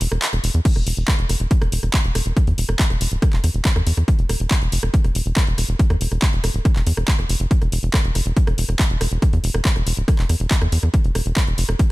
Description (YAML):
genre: psychedelic trance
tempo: 140 BPM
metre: 4/4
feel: straight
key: unclear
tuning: A4 = 440 Hz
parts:
  - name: tight sequencer bass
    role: bass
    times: 0.0-11.7 s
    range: D1 to E2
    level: -20 LUFS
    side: equal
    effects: tube saturation
  - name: techno drum kit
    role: drums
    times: 0.0-11.9 s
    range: crash cymbal, handclaps, hi-hat, rim click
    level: -25 LUFS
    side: equal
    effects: overdrive, studio reverb
  - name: electronic kick drum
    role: drums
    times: 0.7-11.9 s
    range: none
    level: -18 LUFS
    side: equal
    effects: overdrive, studio reverb
room: little or no reverb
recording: none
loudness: -17 LUFS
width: side -20 dB against mid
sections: 0.0-11.9 A section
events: break 0.0-0.7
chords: none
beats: 0.22 | 0.65 1.08 1.51 1.94 | 2.37 2.79 3.22 3.65 | 4.08 4.51 4.94 5.37 | 5.79 6.22 6.65 7.08 | 7.51 7.94 8.37 8.79 | 9.22 9.65 10.08 10.51 | 10.94 11.37 11.79